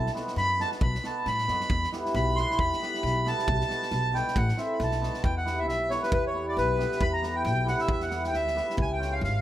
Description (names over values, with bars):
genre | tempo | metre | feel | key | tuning
balkan folk, Balkan wedding band | 136 BPM | 2/4 | swing 55% on 16ths | E dorian sharp4 from 5.2 s | A4 = 440 Hz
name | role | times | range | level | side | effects
accordion | melody | 0.0-9.4 s | B4 to C6 | -29 LUFS | equal | plate reverb
upright bass | bass | 0.0-9.4 s | G#1 to A2 | -30 LUFS | left 1 dB | none
cimbalom | accompaniment | 0.1-9.2 s | B3 to C#5 | -31 LUFS | equal | none
loose indie drum kit | percussion | 0.1-9.3 s | kick drum, snare drum | -33 LUFS | equal | none
room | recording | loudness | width
moderate studio reverb, RT60 0.5 s | none | -25 LUFS | side -12 dB against mid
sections
0.0-5.2 A section; 5.2-9.4 B section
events
accordion solo 0.0-5.2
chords
0.0 B; 1.7 Em; 3.5 B; 4.4 Am; 4.8 B7; 5.2 Em; 8.8 C#